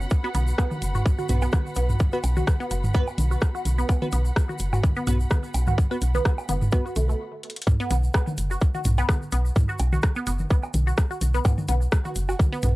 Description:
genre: minimal techno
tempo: 127 BPM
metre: 4/4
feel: swing 55% on 16ths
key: unclear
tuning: A4 = 440 Hz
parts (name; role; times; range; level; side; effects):
- woody FM bass; bass; 0.0-12.8 s; F#1 to B1; -23 LUFS; equal; sidechain pumping
- tube shaker; percussion; 0.0-12.7 s; none; -42 LUFS; left 1 dB; none
- dark studio string section; texture; 0.0-7.2 s; B3 to B5; -38 LUFS; equal; sidechain pumping
- electronic kick drum; drums; 0.1-12.5 s; none; -21 LUFS; equal; none
- resonant blip pluck; riff; 0.2-12.7 s; A3 to F#4; -31 LUFS; right 1 dB; phaser, sidechain pumping, tape echo
- wavetable chord stab; stabs; 0.2-6.8 s; B3 to B4; -33 LUFS; right 1 dB; tape echo
- garage drum kit; drums; 0.3-12.7 s; hi-hat, rim click; -30 LUFS; equal; none
- electronic toms and woodblock; percussion; 0.3-12.7 s; none; -29 LUFS; right 1 dB; none
room: little or no reverb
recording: dry, gritty hardware recording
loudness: -21 LUFS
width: side -19 dB against mid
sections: 0.0-7.7 A section; 7.7-12.8 B section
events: stop 7.2-7.7; drum fill 7.4; drop 7.7-12.8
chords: 0.0 B5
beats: | 0.11 0.58 1.05 1.53 | 2.00 2.47 2.94 3.42 | 3.89 4.36 4.83 5.31 | 5.78 6.25 6.72 7.20 | 7.67 8.14 8.61 9.09 | 9.56 10.03 10.50 10.98 | 11.45 11.92 12.39

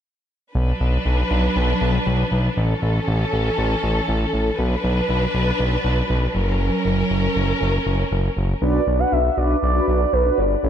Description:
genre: pop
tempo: 119 BPM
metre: 4/4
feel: straight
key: B minor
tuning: A4 = 441 Hz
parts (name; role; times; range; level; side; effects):
- warm symphonic string section; sustained chords; 0.5-8.6 s; E3 to B4; -22 LUFS; equal; none
- smooth synth bass; bass; 0.6-10.7 s; F#1 to B1; -20 LUFS; equal; none
- mellow horn-like synth lead; melody; 8.6-10.7 s; B4 to F#5; -21 LUFS; right 2 dB; chorus, phaser, diffuse ambient delay
- mellow synth brass; accompaniment; 8.6-10.7 s; C#4 to B4; -22 LUFS; left 1 dB; chorus
room: moderate lush hall reverb, RT60 2.6 s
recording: dreamy mix soaked in reverb, nothing above 10.9 kHz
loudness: -18 LUFS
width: side -9 dB against mid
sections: 0.5-8.6 A section; 8.6-10.7 B section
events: none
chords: 0.5 Bm; 2.6 A; 4.6 Bm; 6.3 F#; 8.6 Bm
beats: | 0.55 1.05 1.56 2.06 | 2.57 3.07 3.57 4.08 | 4.58 5.09 5.59 6.09 | 6.60 7.10 7.61 8.11 | 8.62 9.12 9.62 10.13 | 10.63

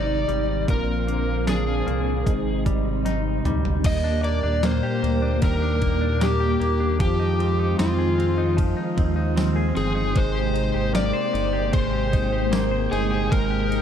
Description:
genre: dream pop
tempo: 76 BPM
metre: 4/4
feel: straight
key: Ab lydian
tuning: A4 = 440 Hz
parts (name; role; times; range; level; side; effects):
- overdriven slide guitar; melody; 0.0-13.8 s; F4 to Eb5; -26 LUFS; left 1 dB; tape echo
- ensemble organ-string; sustained chords; 0.0-13.8 s; Bb2 to G5; -26 LUFS; equal; ensemble chorus
- direct-recorded clean electric guitar; arpeggios; 0.0-13.8 s; Ab2 to C5; -29 LUFS; left 2 dB; lush chorus, tape echo
- round analog bass; bass; 0.0-13.8 s; G1 to F2; -25 LUFS; equal; none
- detuned 8-bit digital drum machine; drums; 0.3-13.8 s; crash cymbal, hi-hat, kick drum, ride cymbal, snare drum, tambourine, toms; -24 LUFS; equal; overdrive
room: light reverb, digital ambience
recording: dark, warm production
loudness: -20 LUFS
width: side -8 dB against mid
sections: 0.0-3.8 A section; 3.8-13.8 B section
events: drum fill 3.1-3.8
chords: 0.0 Abmaj7; 0.7 Bb7; 2.3 Abmaj7; 3.8 Ebmaj7; 7.0 Fm7; 10.2 Abmaj9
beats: | 0.68 1.47 2.26 3.05 | 3.84 4.63 5.42 6.21 | 7.00 7.79 8.58 9.37 | 10.16 10.95 11.74 12.53 | 13.32

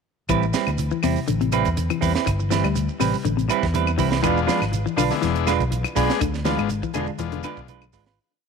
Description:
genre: afrobeat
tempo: 122 BPM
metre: 4/4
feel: straight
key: A minor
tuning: A4 = 442 Hz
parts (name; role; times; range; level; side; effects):
- clean electric guitar; arpeggios; 0.3-7.7 s; C3 to G#3; -26 LUFS; left 12 dB; tape echo
- semi-hollow electric guitar; stabs; 0.3-8.2 s; G3 to B4; -24 LUFS; right 12 dB; none
- fingered electric bass; bass; 0.3-8.2 s; E1 to E2; -25 LUFS; left 1 dB; none
- tight funk drum kit; drums; 0.3-8.2 s; hi-hat, kick drum, snare drum; -30 LUFS; right 3 dB; none
- claves; percussion; 0.3-7.9 s; none; -31 LUFS; left 16 dB; none
- shekere; percussion; 0.3-8.2 s; none; -34 LUFS; right 8 dB; none
- overdriven combo organ; accompaniment; 4.2-7.7 s; G#3 to G#4; -27 LUFS; left 13 dB; none
room: light reverb, small room ambience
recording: 1960s-style stereo with parts hard left and right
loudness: -20 LUFS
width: side -5 dB against mid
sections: 0.3-8.2 groove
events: fade-out 6.2-8.2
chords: 0.3 Am9; 4.2 E7b9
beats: | 0.29 0.78 1.28 1.77 | 2.27 2.76 3.25 3.74 | 4.24 4.73 5.22 5.71 | 6.21 6.70 7.19 7.68

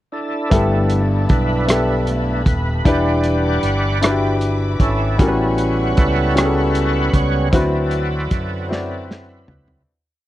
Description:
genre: slow gospel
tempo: 51 BPM (dotted quarters)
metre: 6/8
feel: straight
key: G major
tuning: A4 = 440 Hz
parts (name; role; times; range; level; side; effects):
- overdriven tonewheel organ; sustained chords; 0.1-9.8 s; F#3 to F#5; -22 LUFS; right 2 dB; slow rotary speaker, chorus vibrato
- clear concert grand piano; accompaniment; 0.5-9.9 s; G2 to D5; -20 LUFS; left 2 dB; none
- rich studio string section; sustained chords; 0.5-9.8 s; E5 to D6; -32 LUFS; left 2 dB; none
- fingered electric bass; bass; 0.5-9.8 s; Eb1 to F#2; -20 LUFS; equal; none
- warm soul drum kit; drums; 0.5-9.9 s; hi-hat, kick drum, rim click, snare drum, toms; -17 LUFS; equal; none
room: little or no reverb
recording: worn, warbling old tape, cassette tape, warbly pitch drift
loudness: -15 LUFS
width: side -14 dB against mid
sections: 0.0-0.5 pickup bar; 0.5-9.9 verse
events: tonewheel organ solo 0.5-9.9; fade-out 7.5-9.9; drum fill 8.7-9.9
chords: 0.0 Dsus2; 0.5 G69; 2.9 Em7; 5.2 A13; 7.5 D13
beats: | 0.51 1.68 | 2.85 4.02 | 5.19 6.36 | 7.53 8.70

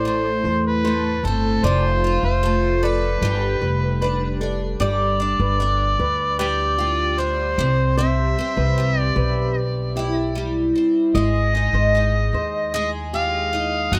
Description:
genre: acoustic pop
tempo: 76 BPM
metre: 4/4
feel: straight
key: unclear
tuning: A4 = 440 Hz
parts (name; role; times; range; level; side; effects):
- overdriven harmonica; melody; 0.0-14.0 s; G4 to F#5; -25 LUFS; equal; digital delay
- picked twelve-string acoustic guitar; accompaniment; 0.0-14.0 s; A2 to A4; -26 LUFS; equal; double-tracked
- flamenco guitar; arpeggios; 0.0-13.5 s; G4 to E5; -31 LUFS; equal; none
- upright bass; bass; 0.0-14.0 s; F1 to E2; -25 LUFS; equal; none
room: light reverb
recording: none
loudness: -20 LUFS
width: mono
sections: 0.0-4.8 A section; 4.8-14.0 B section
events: none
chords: 0.0 Am; 1.6 F; 3.2 G; 4.8 G7; 7.6 Cmaj7; 11.1 Ab6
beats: 0.05 0.84 | 1.63 2.42 3.22 4.01 | 4.80 5.60 6.39 7.18 | 7.97 8.77 9.56 10.35 | 11.15 11.94 12.73 13.52

